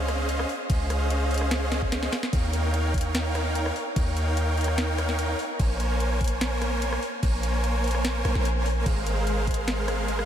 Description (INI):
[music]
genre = future bass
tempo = 147 BPM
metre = 4/4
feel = half-time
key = unclear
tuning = A4 = 442 Hz
[part]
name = supersaw chords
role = riff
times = 0.0-10.3 s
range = Ab3 to Ab5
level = -28 LUFS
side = right 1 dB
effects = cassette tape, sidechain pumping, diffuse ambient delay
[part]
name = warm 808-style bass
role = bass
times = 0.0-10.2 s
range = Ab1 to Eb2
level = -27 LUFS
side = equal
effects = tube saturation, sidechain pumping
[part]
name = trap drum kit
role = drums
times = 0.1-10.3 s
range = crash cymbal, hi-hat, rim click, snare drum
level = -33 LUFS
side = equal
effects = none
[part]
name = electronic kick drum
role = drums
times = 0.7-9.6 s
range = none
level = -26 LUFS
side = equal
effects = none
[sound]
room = moderate huge ambient reverb, RT60 4.1 s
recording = dreamy mix soaked in reverb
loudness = -23 LUFS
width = side -10 dB against mid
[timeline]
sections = 0.0-10.3 A section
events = drum fill 1.7-2.3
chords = 0.0 Dbmaj9; 2.3 Eb7; 5.6 Bbm9; 8.9 Ab69